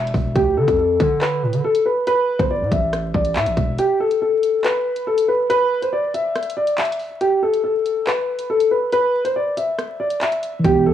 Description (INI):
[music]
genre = hip hop, drill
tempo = 140 BPM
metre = 4/4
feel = half-time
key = unclear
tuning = A4 = 440 Hz
[part]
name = dark concert grand piano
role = melody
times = 0.0-10.9 s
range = G4 to E5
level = -18 LUFS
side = left 1 dB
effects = low-pass filter, cassette tape
[part]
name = distorted 808-style bass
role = bass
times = 0.0-3.8, 10.6-10.9 s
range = E1 to D3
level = -22 LUFS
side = right 1 dB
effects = distortion
[part]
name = drill drum kit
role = drums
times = 0.0-10.7 s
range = handclaps, hi-hat, kick drum, rim click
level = -24 LUFS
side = equal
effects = cassette tape
[part]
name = mellow tine electric piano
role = accompaniment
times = 10.6-10.9 s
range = E3 to G4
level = -16 LUFS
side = right 4 dB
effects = medium stereo tremolo, low-pass filter, cassette tape
[sound]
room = light reverb, digital ambience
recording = home recording on cassette, vinyl crackle, small room ambience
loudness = -17 LUFS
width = side -10 dB against mid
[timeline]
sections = 0.0-10.9 A section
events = kick muted 3.8-10.6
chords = 0.4 Dm; 2.1 A5; 3.8 N.C.